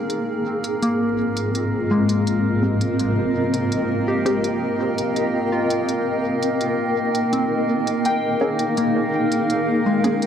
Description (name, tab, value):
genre	ambient dub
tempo	83 BPM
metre	4/4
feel	straight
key	unclear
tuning	A4 = 440 Hz
part	granular cloud pad	sustained chords	0.0-10.3 s	Ab2 to G5	-21 LUFS	equal	built-in reverb
part	soft synth bell	arpeggios	0.0-10.3 s	Ab3 to G5	-24 LUFS	left 2 dB	chorus, low-pass filter, dub echo
part	drifting glass-harmonics texture	texture	0.0-10.3 s	Bb3 to Bb4	-27 LUFS	right 1 dB	chorus, built-in reverb
part	electronic hi-hat	drums	0.1-10.3 s	none	-32 LUFS	equal	none
part	filtered dub chord stab	stabs	2.6-10.2 s	Ab3 to Ab4	-26 LUFS	equal	phaser, vintage 12-bit sampler grit, dub echo
room	moderate plate reverb, RT60 3.5 s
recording	echo-heavy mix, vinyl crackle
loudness	-18 LUFS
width	side -8 dB against mid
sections	0.0-10.3 A section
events	filter sweep on synth bell 0.0-10.3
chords	0.1 Abmaj7; 5.9 Bb7(no3)